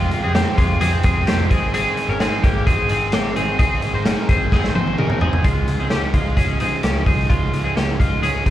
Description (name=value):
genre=jangly indie pop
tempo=130 BPM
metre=4/4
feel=straight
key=unclear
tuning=A4 = 439 Hz
part: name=overdriven electric guitar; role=accompaniment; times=0.0-8.5 s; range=F2 to Ab4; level=-25 LUFS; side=right 6 dB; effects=spring reverb, slapback echo
part: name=twelve-string electric guitar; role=arpeggios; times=0.0-8.5 s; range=Ab3 to C5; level=-22 LUFS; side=left 3 dB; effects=wide subtle chorus, slapback echo
part: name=vintage muted picked electric bass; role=bass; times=0.0-8.5 s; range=Ab1 to Db3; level=-23 LUFS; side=equal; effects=none
part: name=raw garage drum kit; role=drums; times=0.1-8.5 s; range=hi-hat, kick drum, snare drum, toms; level=-19 LUFS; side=equal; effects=none
room=small room ambience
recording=live gig heard through the venue's PA, club reverb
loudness=-16 LUFS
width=side -13 dB against mid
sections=0.0-5.5 A section; 5.5-8.5 B section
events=drum fill 4.5-5.5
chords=0.0 Fmadd9; 1.5 Ab; 5.5 Dbadd9